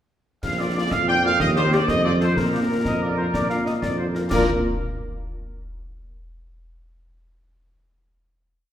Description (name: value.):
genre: military-style march for wind band.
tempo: 124 BPM (dotted quarters).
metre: 6/8.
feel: straight.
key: Bb major.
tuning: A4 = 440 Hz.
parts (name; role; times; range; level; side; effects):
clear trumpet section; melody; 0.4-4.5 s; Bb4 to G5; -24 LUFS; equal; none.
warm tuba; bass; 0.4-4.4 s; Bb1 to Bb2; -23 LUFS; right 1 dB; none.
concert snare drum, clash cymbals and concert bass drum; drums; 0.4-4.5 s; none; -30 LUFS; equal; none.
clear woodwind section; second line; 0.6-4.4 s; F4 to F5; -29 LUFS; left 2 dB; none.
mellow French horn section; accompaniment; 0.6-4.5 s; A3 to G4; -29 LUFS; left 2 dB; none.
room: wet recital hall reverb, RT60 1.8 s.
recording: recorded in a church or concert hall.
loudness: -19 LUFS.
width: side -10 dB against mid.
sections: 0.4-4.3 A section; 4.3-5.3 final chord.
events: none.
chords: 0.4 Bb; 1.4 Ebmaj7; 1.9 F; 2.4 Bb.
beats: | 0.43 0.92 | 1.40 1.89 | 2.37 2.86 | 3.34 3.83 | 4.32.